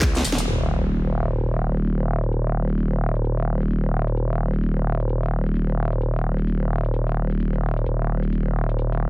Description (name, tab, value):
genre	bass house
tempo	130 BPM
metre	4/4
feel	swing 60% on 16ths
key	unclear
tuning	A4 = 438 Hz
part	vowel-sweep wobble bass	bass	0.0-9.1 s	Eb1 to Db2	-21 LUFS	equal	chorus, tube saturation, sidechain pumping
part	house drum kit	drums	0.0-9.0 s	handclaps, hi-hat, snare drum	-25 LUFS	equal	low-pass filter on hats, low-pass filter on snare
part	maracas	percussion	0.0-0.5 s	none	-35 LUFS	right 4 dB	none
part	impact	sound effects	0.5-2.3 s	none	-30 LUFS	equal	none
room	digital ambience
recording	none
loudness	-21 LUFS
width	side -22 dB against mid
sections	0.5-9.1 A section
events	drum fill 0.0-0.5; band accent 0.3; impact 0.5-2.3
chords	none